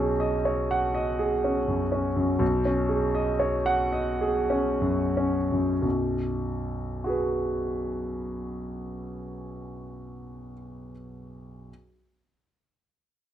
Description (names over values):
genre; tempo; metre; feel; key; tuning
classical, impressionist solo piano; 41-64 BPM; 3/4; rubato; B major; A4 = 440 Hz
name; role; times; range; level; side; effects
clear concert grand piano; solo; 0.0-11.7 s; B1 to F#5; -25 LUFS; equal; none
room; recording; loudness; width
light reverb; dark, warm production; -24 LUFS; side -11 dB against mid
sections
0.0-2.4 A section; 2.4-5.8 B section; 5.8-9.4 C section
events
slowing down 0.0-5.8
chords
0.0 B69; 5.8 B5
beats
0.46 1.43 | 2.40 3.40 4.50 | 5.83 7.05 8.23